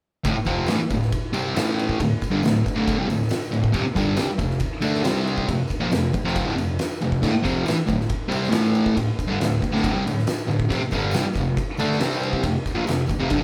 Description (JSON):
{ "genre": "garage rock duo or trio", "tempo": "138 BPM", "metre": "4/4", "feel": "straight", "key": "D minor", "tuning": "A4 = 440 Hz", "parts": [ { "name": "fuzz guitar", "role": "riff", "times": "0.2-13.4 s", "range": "D2 to D4", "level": "-24 LUFS", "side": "equal", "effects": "distortion" }, { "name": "oversized low-tuned drum kit", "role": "drums", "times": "0.2-13.4 s", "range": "crash cymbal, kick drum, ride cymbal, snare drum", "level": "-29 LUFS", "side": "equal", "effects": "none" }, { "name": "tambourine", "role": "percussion", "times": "0.4-13.4 s", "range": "none", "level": "-49 LUFS", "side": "equal", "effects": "none" } ], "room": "moderate large studio reverb, RT60 1.0 s", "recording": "band playing live in one room", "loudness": "-23 LUFS", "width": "mono", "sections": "0.2-13.4 A section", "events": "none", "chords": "0.2 Dm; 1.6 A5; 2.0 D5; 3.7 F5; 5.1 C5; 5.5 F5; 7.2 Dm; 8.5 A5; 9.0 D5; 10.7 F5; 12.0 C5; 12.5 F5", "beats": "| 0.25 0.69 1.12 1.56 | 2.00 2.44 2.88 3.31 | 3.75 4.18 4.62 5.06 | 5.49 5.93 6.36 6.80 | 7.23 7.67 8.10 8.54 | 8.97 9.41 9.84 10.28 | 10.71 11.15 11.58 12.02 | 12.45 12.89 13.32" }